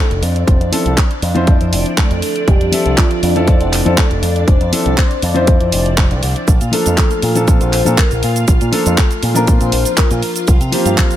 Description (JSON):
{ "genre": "nu-disco, nu disco", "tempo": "120 BPM", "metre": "4/4", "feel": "straight", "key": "F major", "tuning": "A4 = 440 Hz", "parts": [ { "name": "soft octave-layered synth lead", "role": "melody", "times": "0.0-11.2 s", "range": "F4 to C5", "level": "-21 LUFS", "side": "left 1 dB", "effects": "chorus, phaser, ping-pong delay" }, { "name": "string machine, full ensemble", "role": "sustained chords", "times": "0.0-11.2 s", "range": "D4 to F5", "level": "-23 LUFS", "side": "equal", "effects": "ensemble chorus, sidechain pumping" }, { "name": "picked electric bass with an envelope filter", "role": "bass", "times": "0.1-11.0 s", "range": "F1 to C3", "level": "-17 LUFS", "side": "equal", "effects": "tube saturation" }, { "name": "house drum kit", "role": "drums", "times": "0.1-11.2 s", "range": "handclaps, hi-hat, shaker", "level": "-20 LUFS", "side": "right 1 dB", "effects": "none" }, { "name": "electronic kick drum", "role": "drums", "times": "0.5-11.1 s", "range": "none", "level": "-12 LUFS", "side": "equal", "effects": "none" }, { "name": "dark grand piano", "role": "accompaniment", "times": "0.7-11.2 s", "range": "F3 to E5", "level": "-20 LUFS", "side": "left 2 dB", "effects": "sidechain pumping" } ], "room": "little or no reverb", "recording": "none", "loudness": "-11 LUFS", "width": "side -12 dB against mid", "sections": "0.0-11.2 A section", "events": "none", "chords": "0.0 Fmaj7; 6.5 Bbmaj7; 10.5 C7sus4", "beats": "| 0.48 0.98 1.48 1.98 | 2.48 2.98 3.48 3.98 | 4.48 4.98 5.48 5.98 | 6.48 6.98 7.48 7.98 | 8.48 8.98 9.48 9.98 | 10.48 10.98" }